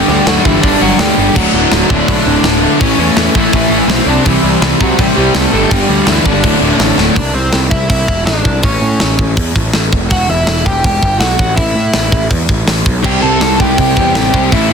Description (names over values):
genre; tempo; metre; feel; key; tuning
punk rock; 164 BPM; 4/4; straight; unclear; A4 = 440 Hz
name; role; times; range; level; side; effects
overdriven electric guitar; melody; 0.0-14.7 s; E3 to A5; -16 LUFS; equal; none
cranked stack guitar; riff; 0.0-7.2 s; D2 to C4; -19 LUFS; equal; none
distorted electric guitar; riff; 0.0-7.2, 13.0-14.7 s; D2 to C5; -15 LUFS; left 14 dB; distortion
raw garage guitar; riff; 0.0-7.2, 13.0-14.7 s; D2 to C4; -16 LUFS; right 13 dB; overdrive
fuzz picked electric bass; bass; 0.1-14.7 s; D1 to A2; -16 LUFS; equal; overdrive
tight metal drum kit; drums; 0.3-14.6 s; crash cymbal, hi-hat, kick drum, snare drum; -14 LUFS; equal; soft clipping on kick
room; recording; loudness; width
little or no reverb; dense, heavily limited modern master; -9 LUFS; side -6 dB against mid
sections
0.0-7.2 A section; 7.2-14.7 B section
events
drum fill 7.0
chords
0.0 G5; 1.4 D; 2.8 A; 4.1 C; 5.5 G5; 6.4 D5; 7.2 C; 8.6 A; 9.9 Em; 11.4 A5; 13.0 C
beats
0.26 0.62 0.99 | 1.35 1.71 2.08 2.44 | 2.80 3.16 3.53 3.89 | 4.25 4.62 4.98 5.34 | 5.71 6.07 6.43 6.80 | 7.16 7.53 7.90 8.26 | 8.63 8.99 9.36 9.73 | 10.10 10.46 10.83 11.20 | 11.56 11.93 12.30 12.67 | 13.04 13.40 13.77 14.14 | 14.51